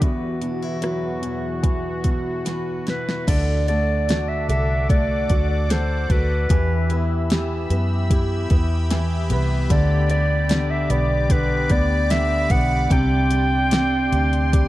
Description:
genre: pop ballad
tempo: 74 BPM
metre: 4/4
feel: straight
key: unclear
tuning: A4 = 440 Hz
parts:
  - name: breathy clarinet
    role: melody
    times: 0.0-14.7 s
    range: F#4 to G5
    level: -25 LUFS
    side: equal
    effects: ping-pong delay
  - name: warm grand piano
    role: accompaniment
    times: 0.0-14.7 s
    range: E2 to A4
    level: -26 LUFS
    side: right 2 dB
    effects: none
  - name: sweeping resonant pad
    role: sustained chords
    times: 0.0-14.7 s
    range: E2 to E6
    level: -31 LUFS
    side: left 1 dB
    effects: chorus
  - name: picked steel-string acoustic guitar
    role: arpeggios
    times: 0.0-14.7 s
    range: C3 to B4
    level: -30 LUFS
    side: left 5 dB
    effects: none
  - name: smooth R&B drum kit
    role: drums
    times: 0.0-14.7 s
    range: crash cymbal, hi-hat, kick drum, rim click, snare drum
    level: -21 LUFS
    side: equal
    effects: overdrive
  - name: vintage muted fingered electric bass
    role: bass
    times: 3.3-14.7 s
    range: B1 to F#2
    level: -22 LUFS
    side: equal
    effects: none
room: small room ambience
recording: dark, warm production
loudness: -18 LUFS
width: side -16 dB against mid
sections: 0.0-3.3 A section; 3.3-14.7 B section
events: drum fill 2.5-3.3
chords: 0.0 Esus2; 3.3 D; 6.5 Em; 9.7 G; 12.9 Csus2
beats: | 0.02 0.82 1.64 2.46 | 3.28 4.09 4.90 5.70 | 6.50 7.31 8.11 8.91 | 9.70 10.50 11.30 12.10 | 12.91 13.72 14.54

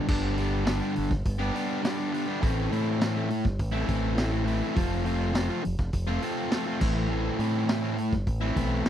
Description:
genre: indie rock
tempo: 103 BPM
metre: 4/4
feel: straight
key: unclear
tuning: A4 = 439 Hz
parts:
  - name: fuzz guitar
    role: riff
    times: 0.0-8.9 s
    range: G2 to G4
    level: -28 LUFS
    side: equal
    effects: distortion
  - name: growling fingered electric bass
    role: bass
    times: 0.1-8.9 s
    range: F1 to A2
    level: -29 LUFS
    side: equal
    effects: overdrive
  - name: raw garage drum kit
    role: drums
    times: 0.1-8.9 s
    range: crash cymbal, hi-hat, kick drum, snare drum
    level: -29 LUFS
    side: equal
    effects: none
room: little or no reverb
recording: dry, close 1970s-style studio recording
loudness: -25 LUFS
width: side -10 dB against mid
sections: 0.1-8.9 A section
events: none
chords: 0.1 G; 2.4 Am; 4.8 F; 6.8 Amadd9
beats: | 0.09 0.68 1.26 1.84 | 2.43 3.02 3.60 4.18 | 4.77 5.35 5.94 6.52 | 7.11 7.69 8.28 8.86

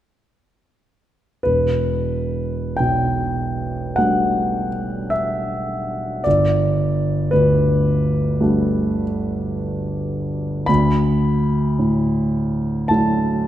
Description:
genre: classical, impressionist solo piano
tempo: 42-57 BPM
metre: 4/4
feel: rubato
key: E minor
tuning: A4 = 439 Hz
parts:
  - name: clear concert grand piano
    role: solo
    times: 1.4-13.5 s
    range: E1 to B5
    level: -17 LUFS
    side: equal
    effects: none
room: moderate concert hall reverb, RT60 2.2 s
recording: minimal, uncompressed stereo recording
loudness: -17 LUFS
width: side -12 dB against mid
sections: 1.5-13.5 A section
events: none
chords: 1.5 Em11; 6.3 Gmaj9; 10.7 Dadd9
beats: | 1.46 2.81 4.00 5.13 | 6.25 7.33 8.39 9.46 | 10.69 11.79 12.90

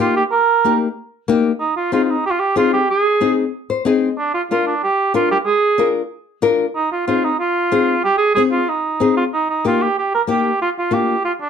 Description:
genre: latin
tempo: 187 BPM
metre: 4/4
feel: straight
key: Eb major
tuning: A4 = 439 Hz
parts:
  - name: mellow cor anglais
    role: melody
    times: 0.0-11.5 s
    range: D4 to Bb4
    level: -16 LUFS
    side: right 4 dB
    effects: plate reverb
  - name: nylon-string guitar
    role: accompaniment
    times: 0.0-11.1 s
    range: Bb3 to Eb5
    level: -17 LUFS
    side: left 6 dB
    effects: none
room: moderate studio ambience, RT60 0.5 s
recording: dark, warm production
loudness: -15 LUFS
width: side -7 dB against mid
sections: 0.0-9.3 A section; 9.3-11.5 B section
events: nylon-string guitar fill 3.5-4.2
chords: 0.0 Eb; 1.6 Ab; 4.2 Bb; 6.7 Ab; 9.3 Eb; 10.6 Bb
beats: 0.00 | 0.32 0.64 0.96 1.28 | 1.60 1.93 2.25 2.57 | 2.89 3.21 3.53 3.85 | 4.17 4.50 4.82 5.14 | 5.46 5.78 6.10 6.42 | 6.75 7.07 7.39 7.71 | 8.03 8.35 8.67 9.00 | 9.32 9.64 9.96 10.28 | 10.61 10.93 11.25

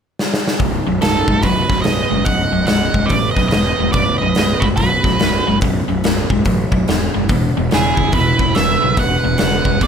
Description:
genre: blues rock power trio and southern rock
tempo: 143 BPM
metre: 4/4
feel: swing 62% on 8ths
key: B mixolydian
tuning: A4 = 440 Hz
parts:
  - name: big rock drum kit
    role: drums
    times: 0.2-9.9 s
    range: hi-hat, kick drum, snare drum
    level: -18 LUFS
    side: equal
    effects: none
  - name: biting overdriven guitar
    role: riff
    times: 0.6-9.9 s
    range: B1 to C#3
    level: -19 LUFS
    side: left 1 dB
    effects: none
  - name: fuzz picked electric bass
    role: bass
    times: 0.6-9.9 s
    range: B0 to B1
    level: -21 LUFS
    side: equal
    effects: overdrive
  - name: octave-fuzz lead guitar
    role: melody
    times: 1.0-9.9 s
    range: G#4 to F#5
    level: -18 LUFS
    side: right 3 dB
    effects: distortion
  - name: biting lead guitar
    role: second line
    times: 1.0-9.9 s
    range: D#4 to D#5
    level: -24 LUFS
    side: right 6 dB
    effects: overdrive
room: light reverb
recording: none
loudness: -13 LUFS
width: side -7 dB against mid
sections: 0.6-9.9 A section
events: drum fill 0.2-0.6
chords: 0.0 N.C.; 0.6 B; 7.3 E5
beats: 0.18 | 0.60 1.02 1.44 1.85 | 2.27 2.69 3.11 3.53 | 3.95 4.37 4.79 5.21 | 5.62 6.04 6.46 6.88 | 7.30 7.72 8.14 8.56 | 8.98 9.40 9.81

